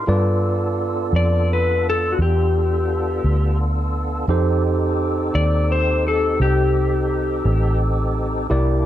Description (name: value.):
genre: blues.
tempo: 57 BPM (dotted quarters).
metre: 12/8.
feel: straight.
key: unclear.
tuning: A4 = 436 Hz.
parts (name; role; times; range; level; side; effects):
overdriven tine electric piano; accompaniment; 0.0-8.9 s; Eb4 to D5; -25 LUFS; moving between equal and right 7 dB; auto-pan.
tonewheel organ; sustained chords; 0.0-8.9 s; Bb3 to A4; -26 LUFS; equal; slow rotary speaker, overdrive, chorus vibrato.
vintage muted fingered electric bass; bass; 0.0-8.9 s; A1 to G2; -20 LUFS; equal; none.
clean lap steel guitar; melody; 1.2-7.8 s; F#4 to D5; -21 LUFS; left 4 dB; none.
room: light reverb.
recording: dark, warm production.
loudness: -17 LUFS.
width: side -12 dB against mid.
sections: 0.0-8.9 A section.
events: none.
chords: 0.1 G9; 4.3 F9.